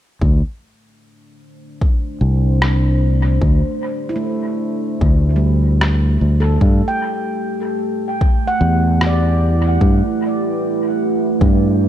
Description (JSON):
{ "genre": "ambient dub", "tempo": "75 BPM", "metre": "4/4", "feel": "swing 55% on 16ths", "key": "unclear", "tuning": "A4 = 440 Hz", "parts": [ { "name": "deep dark ambient pad", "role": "sustained chords", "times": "1.6-11.9 s", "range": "A3 to C5", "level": "-22 LUFS", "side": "right 2 dB", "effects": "chorus, built-in reverb, vintage 12-bit sampler grit" }, { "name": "fingered electric bass", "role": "bass", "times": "0.2-11.9 s", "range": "C2 to G2", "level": "-14 LUFS", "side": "equal", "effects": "tube saturation" }, { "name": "electronic kick drum", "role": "drums", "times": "0.2-11.6 s", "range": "none", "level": "-16 LUFS", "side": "equal", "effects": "overdrive, studio reverb" }, { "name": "electronic rim click", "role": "drums", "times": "2.6-9.2 s", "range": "none", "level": "-24 LUFS", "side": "equal", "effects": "studio reverb, dub echo" }, { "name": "handpan", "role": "arpeggios", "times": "4.1-11.9 s", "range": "G3 to G5", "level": "-23 LUFS", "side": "right 1 dB", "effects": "tape echo" } ], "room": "light reverb", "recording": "none", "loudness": "-14 LUFS", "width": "side -11 dB against mid", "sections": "0.2-11.9 A section", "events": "none", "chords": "0.2 D7sus4; 6.6 G69" }